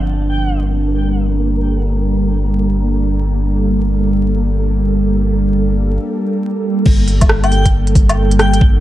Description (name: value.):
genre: future garage.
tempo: free time.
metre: none.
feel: none.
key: unclear.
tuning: A4 = 440 Hz.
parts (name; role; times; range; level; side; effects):
ethereal airy pad; sustained chords; 0.0-8.8 s; G3 to A4; -18 LUFS; right 1 dB; ensemble chorus, built-in reverb, sidechain pumping.
warm sub bass; bass; 0.0-8.8 s; G1; -15 LUFS; equal; sidechain pumping.
wind-like tuned noise texture; texture; 0.3-6.0 s; Bb3; -28 LUFS; left 1 dB; built-in reverb.
electronic kick drum; drums; 6.9-8.7 s; none; -11 LUFS; equal; overdrive.
organic electronic drum kit; drums; 6.9-8.6 s; crash cymbal, hi-hat, rim click, woodblock; -18 LUFS; equal; none.
airy dreamy lead; melody; 7.4-8.6 s; G5; -24 LUFS; left 2 dB; chorus, phaser, tape echo.
room: light reverb, digital ambience.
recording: dark, warm production, vinyl crackle.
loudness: -12 LUFS.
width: side -14 dB against mid.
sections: 0.0-6.9 A section; 6.9-8.8 B section.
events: break 6.0-6.9.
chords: 0.0 Gmadd9.